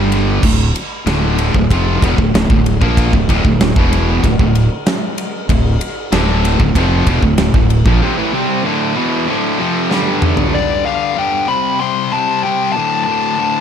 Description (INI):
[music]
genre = hard rock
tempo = 95 BPM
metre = 4/4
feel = straight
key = D dorian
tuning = A4 = 440 Hz
[part]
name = biting overdriven guitar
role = riff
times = 0.0-0.4, 5.5-10.5 s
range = D2 to C4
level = -21 LUFS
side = right 1 dB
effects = none
[part]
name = high-gain distorted guitar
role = riff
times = 0.0-13.6 s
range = D2 to C4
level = -18 LUFS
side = left 11 dB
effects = distortion
[part]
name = high-gain distorted guitar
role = riff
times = 0.0-10.5 s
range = D2 to C4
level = -18 LUFS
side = right 9 dB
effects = distortion
[part]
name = fuzz fingered electric bass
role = bass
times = 0.0-8.0 s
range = D1 to Bb1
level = -16 LUFS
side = equal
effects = overdrive
[part]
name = big rock drum kit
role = drums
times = 0.1-10.5 s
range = crash cymbal, kick drum, ride cymbal, snare drum, toms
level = -16 LUFS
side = equal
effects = none
[part]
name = dark smooth lead guitar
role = melody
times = 10.5-13.6 s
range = D5 to C6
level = -16 LUFS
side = left 1 dB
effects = overdrive, tape echo
[sound]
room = little or no reverb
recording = none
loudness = -12 LUFS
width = side -8 dB against mid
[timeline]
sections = 0.4-10.5 A section; 10.5-13.6 B section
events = break 8.0-10.5; drum fill 9.9-10.5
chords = 0.4 Dm; 9.9 G5; 11.5 C5; 12.8 D5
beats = | 0.44 1.07 1.70 2.33 | 2.97 3.60 4.23 4.87 | 5.50 6.13 6.76 7.39 | 8.02 8.66 9.29 9.92 | 10.55 11.18 11.81 12.44 | 13.07